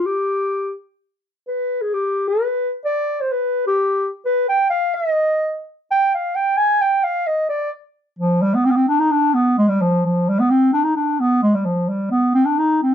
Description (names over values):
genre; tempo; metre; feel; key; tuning
klezmer; 129 BPM; 2/4; straight; G phrygian dominant; A4 = 441 Hz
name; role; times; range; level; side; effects
dark clarinet; solo; 0.0-12.9 s; F3 to Ab5; -16 LUFS; equal; none
room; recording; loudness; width
moderate studio reverb, RT60 0.5 s; dark, warm production; -16 LUFS; side -9 dB against mid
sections
1.0-8.4 A section; 8.4-12.9 B section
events
clarinet solo 1.0-8.4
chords
none